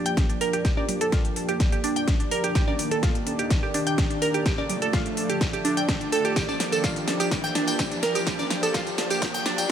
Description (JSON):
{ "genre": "progressive house", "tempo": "126 BPM", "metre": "4/4", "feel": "straight", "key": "G minor", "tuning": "A4 = 441 Hz", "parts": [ { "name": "warm analog pad", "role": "sustained chords", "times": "0.0-9.7 s", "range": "Eb3 to D5", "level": "-29 LUFS", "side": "left 1 dB", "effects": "chorus, sidechain pumping" }, { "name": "glassy wavetable pluck", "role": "arpeggios", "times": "0.0-9.6 s", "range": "D4 to G5", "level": "-26 LUFS", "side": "right 2 dB", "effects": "chorus, sidechain pumping, digital delay" }, { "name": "riser", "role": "sound effects", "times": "1.8-9.7 s", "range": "none", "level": "-37 LUFS", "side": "right 1 dB", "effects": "none" }, { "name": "pop drum kit", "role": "drums", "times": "0.1-9.7 s", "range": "hi-hat, snare drum, tambourine", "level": "-30 LUFS", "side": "equal", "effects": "high-pass filter on snare, sidechain pumping on hats, high-pass filter on hats, sidechain pumping on perc, high-pass filter on perc" }, { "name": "electronic kick drum", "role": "drums", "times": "0.2-9.7 s", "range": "none", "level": "-25 LUFS", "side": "equal", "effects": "none" }, { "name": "congas and woodblock", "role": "percussion", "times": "0.2-9.7 s", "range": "none", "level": "-35 LUFS", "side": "right 4 dB", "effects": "sidechain pumping on perc" } ], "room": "moderate lush hall reverb, RT60 2.0 s", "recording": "high-pass filter", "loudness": "-22 LUFS", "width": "side -9 dB against mid", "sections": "0.0-9.7 A section", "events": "build-up 0.0-9.7; drum fill 0.0-9.7; filter sweep 0.0-9.7; riser 1.8-9.7", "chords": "0.0 Gm7; 2.6 Ebmaj7; 4.5 Dm; 6.4 Gm7" }